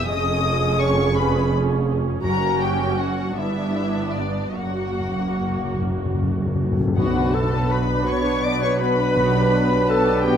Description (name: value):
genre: classical, slow romantic movement for symphony orchestra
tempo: 49-57 BPM (dotted quarters)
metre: 6/8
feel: rubato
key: B minor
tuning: A4 = 443 Hz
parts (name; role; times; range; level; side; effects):
- muted symphonic violin section; melody; 0.0-10.4 s; D5 to D#6; -27 LUFS; left 6 dB; none
- muted symphonic violin section; second line; 0.0-10.4 s; D4 to D#5; -30 LUFS; left 3 dB; none
- muted symphonic viola section; accompaniment; 0.0-10.4 s; A#3 to B4; -26 LUFS; right 2 dB; none
- muted symphonic cello section; bass; 0.0-10.4 s; E#2 to B2; -27 LUFS; right 2 dB; none
- muted symphonic double bass section; bass; 0.0-10.4 s; E#1 to B1; -26 LUFS; right 2 dB; none
- timpani; percussion; 2.2-10.2 s; F#2 to B2; -26 LUFS; left 2 dB; none
- mellow silver concert flute; second line; 7.0-10.4 s; F#4 to D5; -28 LUFS; left 2 dB; none
- warm clarinet; second line; 7.0-10.4 s; F#4 to D5; -28 LUFS; equal; none
- warm French horn section; sustained chords; 7.0-10.4 s; F#3 to D4; -25 LUFS; left 3 dB; none
- dark trumpet section; stabs; 7.0-10.4 s; B4; -25 LUFS; right 2 dB; none
room: moderate scoring stage reverb, RT60 1.6 s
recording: none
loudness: -18 LUFS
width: side -8 dB against mid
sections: 0.0-7.0 A section; 7.0-10.4 B section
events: timpani fill 4.6-7.0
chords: 0.1 C#/E#; 2.2 F#5; 3.4 G; 4.6 F#; 7.0 Bm; 9.2 Gmaj7/B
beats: | 0.08 1.17 | 2.25 3.38 | 4.58 5.78 | 6.97 8.07 | 9.17 10.25